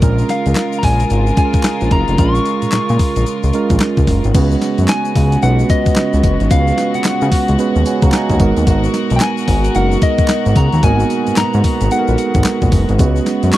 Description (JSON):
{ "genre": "R&B, new jack swing", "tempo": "111 BPM", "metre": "4/4", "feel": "swing 62% on 16ths", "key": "unclear", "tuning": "A4 = 441 Hz", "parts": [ { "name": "mellow tine electric piano", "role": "accompaniment", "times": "0.0-13.6 s", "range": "Ab3 to Bb5", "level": "-18 LUFS", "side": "right 5 dB", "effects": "none" }, { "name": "warm studio string section", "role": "sustained chords", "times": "0.0-13.6 s", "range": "Cb3 to Bb4", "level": "-23 LUFS", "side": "left 2 dB", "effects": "none" }, { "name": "fat analog bass", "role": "bass", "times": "0.0-13.5 s", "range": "F1 to Db3", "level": "-15 LUFS", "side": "left 1 dB", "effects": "none" }, { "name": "crisp 8-bit digital drum machine", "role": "drums", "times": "0.0-13.6 s", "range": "crash cymbal, handclaps, hi-hat, kick drum, snare drum, tambourine", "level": "-15 LUFS", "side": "left 1 dB", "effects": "none" }, { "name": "tube shaker", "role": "percussion", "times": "0.0-13.6 s", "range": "none", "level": "-36 LUFS", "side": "left 13 dB", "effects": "none" }, { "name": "soft struck synth lead", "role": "melody", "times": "0.3-13.6 s", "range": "Eb5 to Db6", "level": "-21 LUFS", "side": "left 3 dB", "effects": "chorus, tape echo" } ], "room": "digital ambience", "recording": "dry, close 1970s-style studio recording", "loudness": "-12 LUFS", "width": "side -15 dB against mid", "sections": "0.0-4.3 A section; 4.3-13.6 B section", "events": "tine electric piano fill 7.6-8.7", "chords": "0.0 Bbm7; 4.3 Db7sus4; 8.4 Abm9; 13.0 Db7sus4" }